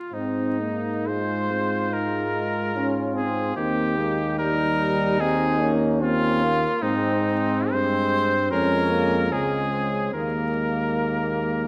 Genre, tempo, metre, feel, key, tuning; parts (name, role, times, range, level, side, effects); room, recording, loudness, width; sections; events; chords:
classical, hymn-like piece for brass band; 72 BPM; 4/4; uneven beats, rubato; Ab major; A4 = 440 Hz
clear cornet; melody; 0.0-11.7 s; Eb4 to C5; -28 LUFS; equal
warm flugelhorn; second line; 0.0-11.7 s; Bb3 to F4; -34 LUFS; equal
clear euphonium; accompaniment; 0.1-11.7 s; G3 to Eb4; -31 LUFS; equal
clear trombone; accompaniment; 0.1-11.7 s; G3 to Db4; -31 LUFS; equal
warm tuba; bass; 0.1-11.7 s; Db2 to Ab2; -30 LUFS; equal
moderate scoring stage reverb, RT60 1.5 s; vinyl crackle; -23 LUFS; mono
0.1-11.7 A section
0.1 Ab; 3.6 Eb; 6.8 Ab; 8.5 Db/F; 10.1 Ebsus4